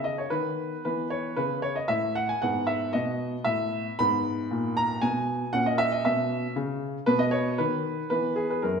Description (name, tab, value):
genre	classical-period piano sonatina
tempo	115 BPM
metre	3/4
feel	rubato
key	E major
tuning	A4 = 440 Hz
part	warm baby grand piano	solo	0.0-8.8 s	F#2 to B5	-25 LUFS	equal	none
room	wet recital hall reverb, RT60 1.3 s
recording	none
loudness	-25 LUFS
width	side -6 dB against mid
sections	0.0-8.8 A section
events	none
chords	0.0 B; 0.8 E5; 2.4 E/G#; 4.0 G#madd9; 5.5 A#dim; 7.1 B; 8.1 E5